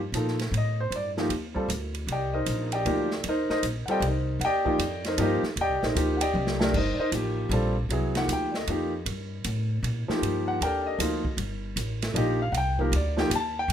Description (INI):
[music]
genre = modal jazz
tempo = 155 BPM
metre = 3/4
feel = swing 64% on 8ths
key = C dorian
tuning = A4 = 440 Hz
[part]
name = upright bass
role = bass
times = 0.0-13.7 s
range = G1 to Bb2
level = -30 LUFS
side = equal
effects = none
[part]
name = warm concert grand piano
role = accompaniment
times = 0.1-13.7 s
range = F3 to A5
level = -26 LUFS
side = equal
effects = none
[part]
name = open jazz drum kit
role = drums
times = 0.1-13.7 s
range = crash cymbal, hi-hat, kick drum, ride cymbal, snare drum, toms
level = -33 LUFS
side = right 3 dB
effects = none
[sound]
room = light reverb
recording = minimal, uncompressed stereo recording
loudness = -24 LUFS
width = side -9 dB against mid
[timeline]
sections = 0.0-13.7 A section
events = drum fill 6.4-6.7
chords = 0.0 Cm9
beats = 0.14 0.52 | 0.91 1.30 1.69 | 2.08 2.47 2.86 | 3.25 3.63 4.02 | 4.41 4.80 5.19 | 5.58 5.96 6.35 | 6.74 7.13 7.51 | 7.90 8.29 8.68 | 9.06 9.45 9.84 | 10.22 10.61 11.00 | 11.38 11.77 12.15 | 12.54 12.93 13.31 | 13.70